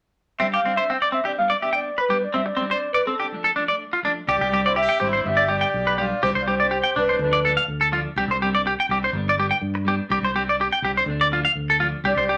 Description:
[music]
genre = highlife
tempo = 124 BPM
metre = 4/4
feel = straight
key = C major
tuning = A4 = 440 Hz
[part]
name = breathy clarinet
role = melody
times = 0.4-7.7, 12.1-12.4 s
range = A4 to G5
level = -26 LUFS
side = equal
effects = none
[part]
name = clean electric guitar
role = accompaniment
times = 0.4-12.4 s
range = F3 to D4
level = -34 LUFS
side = equal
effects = spring reverb
[part]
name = clean electric guitar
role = arpeggios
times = 0.4-12.4 s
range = C4 to G5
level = -23 LUFS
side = equal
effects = none
[part]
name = brilliant trumpet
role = second line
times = 4.3-7.7, 12.1-12.4 s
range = D4 to G4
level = -32 LUFS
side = equal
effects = none
[part]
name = fingered electric bass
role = bass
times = 4.3-12.4 s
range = G1 to G2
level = -31 LUFS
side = equal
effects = none
[sound]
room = wet studio ambience, RT60 0.5 s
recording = none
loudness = -22 LUFS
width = mono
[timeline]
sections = 0.4-4.3 A section; 4.3-12.4 B section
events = none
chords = 0.4 Csus2; 1.4 G; 2.3 Csus2; 3.3 Dm; 4.3 Csus2; 5.3 G; 6.2 Csus2; 7.2 Dm; 8.2 Csus2; 9.1 G; 10.1 Csus2; 11.1 Dm

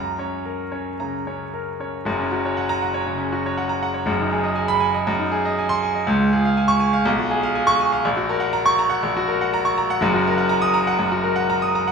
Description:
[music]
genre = classical, virtuoso piano study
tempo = 120 BPM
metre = 4/4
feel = rubato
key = F# major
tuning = A4 = 439 Hz
[part]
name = bright grand piano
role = solo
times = 0.0-11.9 s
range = F#1 to Eb6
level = -18 LUFS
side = right 1 dB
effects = none
[sound]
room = moderate scoring stage reverb, RT60 1.9 s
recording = studio ambience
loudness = -18 LUFS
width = side -5 dB against mid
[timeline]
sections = 0.0-2.1 A section; 2.1-11.9 B section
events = none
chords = 0.0 F#; 4.1 G#m/F#; 5.1 G#7/F#; 6.1 C#; 7.1 C#7/B; 8.0 F#/A#; 10.0 Ebm/Gb

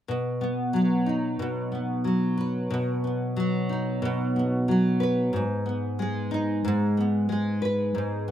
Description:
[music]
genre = pop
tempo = 92 BPM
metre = 4/4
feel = swing 55% on 16ths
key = unclear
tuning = A4 = 440 Hz
[part]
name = nylon-string guitar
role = accompaniment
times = 0.1-8.3 s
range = G#2 to B4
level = -24 LUFS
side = equal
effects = double-tracked left and right
[sound]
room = light reverb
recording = recorded outdoors, with no room sound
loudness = -24 LUFS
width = side -11 dB against mid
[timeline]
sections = 0.1-8.3 A section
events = none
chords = 0.1 B; 5.3 G#m

